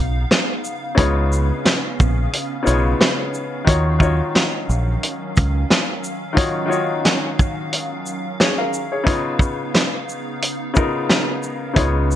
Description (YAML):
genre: hip hop, boom-bap hip-hop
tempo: 89 BPM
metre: 4/4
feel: swing 57% on 16ths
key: unclear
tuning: A4 = 441 Hz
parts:
  - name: hollow soft pad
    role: sustained chords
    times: 0.0-12.2 s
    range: Db3 to F5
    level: -28 LUFS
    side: right 2 dB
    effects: ensemble chorus, high-pass filter, low-pass filter
  - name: deep dub fingered electric bass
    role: bass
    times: 0.0-5.6, 11.8-12.2 s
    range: Bb1 to Eb2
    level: -18 LUFS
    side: equal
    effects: none
  - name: warm soul drum kit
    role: drums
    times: 0.3-12.2 s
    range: hi-hat, kick drum, shaker, snare drum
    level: -17 LUFS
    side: equal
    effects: vintage 12-bit sampler grit, gated reverb
  - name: warm upright piano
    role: accompaniment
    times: 0.9-12.2 s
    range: Db3 to F5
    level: -22 LUFS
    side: left 3 dB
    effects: cassette tape, high-pass filter, low-pass filter
room: light reverb, small room reverb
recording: bright 1980s-style digital production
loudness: -17 LUFS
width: side -11 dB against mid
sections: 0.0-12.2 A section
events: break 0.0-1.0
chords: 0.0 Db9; 3.7 Ebm9; 9.1 Db9